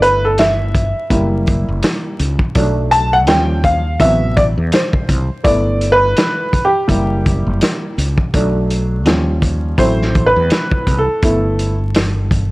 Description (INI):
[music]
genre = hip hop, jazz-hop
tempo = 83 BPM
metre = 4/4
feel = swing 60% on 16ths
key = G major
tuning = A4 = 440 Hz
[part]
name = warm upright piano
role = accompaniment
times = 0.0-12.5 s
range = C3 to A5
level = -15 LUFS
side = equal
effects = none
[part]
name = mellow fretless electric bass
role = bass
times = 0.0-12.5 s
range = F#1 to E2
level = -17 LUFS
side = equal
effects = none
[part]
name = vintage drum kit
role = drums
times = 0.0-12.5 s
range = hi-hat, kick drum, snare drum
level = -17 LUFS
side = equal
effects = vintage 12-bit sampler grit
[sound]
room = small room ambience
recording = dry, gritty hardware recording, vinyl crackle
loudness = -12 LUFS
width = side -20 dB against mid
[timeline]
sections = 0.0-5.4 A section; 5.4-12.5 A section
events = upright piano solo 0.0-5.4, 5.4-12.5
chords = 0.0 G69; 1.1 F#7b9; 2.6 Bm7; 3.3 Eb9; 4.0 Am69; 5.4 G69; 6.9 F#7b9; 8.3 Bm7; 9.1 Eb9; 9.8 Am69; 11.2 G69